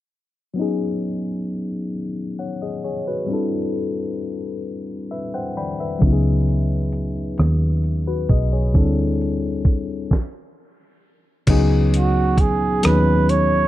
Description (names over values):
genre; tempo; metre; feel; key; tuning
slow six-eight R&B; 44 BPM (dotted quarters); 6/8; straight; C# minor; A4 = 440 Hz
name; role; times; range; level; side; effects
tine electric piano; accompaniment; 0.5-13.7 s; F#3 to B5; -22 LUFS; left 3 dB; phaser
vintage muted fingered electric bass; bass; 6.0-13.7 s; B1 to D#2; -19 LUFS; equal; none
dusty soul sampler-style drum kit; drums; 6.0-13.5 s; crash cymbal, hi-hat, kick drum, rim click, snare drum; -19 LUFS; equal; none
breathy flugelhorn; melody; 11.9-13.7 s; F#4 to C#5; -20 LUFS; right 5 dB; none
room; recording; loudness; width
digital ambience; dry, close 1970s-style studio recording, low-pass filter; -18 LUFS; side -14 dB against mid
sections
0.6-11.5 A section; 11.5-13.7 B section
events
filter sweep 0.6-11.5; tine electric piano fill 4.7-6.0; stop 10.1-11.5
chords
0.6 C#9sus4; 3.3 D9sus4; 6.0 C#9sus4; 8.7 D9sus4; 11.5 C#9sus4